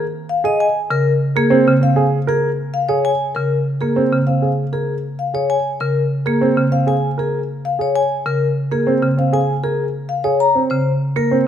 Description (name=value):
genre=classical, minimalist pattern music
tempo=98 BPM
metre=4/4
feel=straight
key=unclear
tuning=A4 = 440 Hz
part: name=vibraphone with medium mallets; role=melody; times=0.0-11.4 s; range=Ab4 to Bb5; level=-20 LUFS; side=left 5 dB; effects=none
part: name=dark baby grand piano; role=arpeggios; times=0.0-11.5 s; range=C4 to Bb4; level=-19 LUFS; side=right 5 dB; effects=none
part: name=marimba with hard mallets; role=accompaniment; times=0.9-11.4 s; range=Db3 to Bb3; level=-19 LUFS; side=equal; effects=none
room=light reverb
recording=close, detailed microphones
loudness=-15 LUFS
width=side -9 dB against mid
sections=0.0-11.5 A section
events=none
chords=0.0 Fm7; 0.6 Db5; 10.4 Gb (rootless)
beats=| 0.60 1.22 1.83 2.44 | 3.05 3.66 4.28 4.89 | 5.50 6.11 6.72 7.34 | 7.95 8.56 9.17 9.79 | 10.40 11.01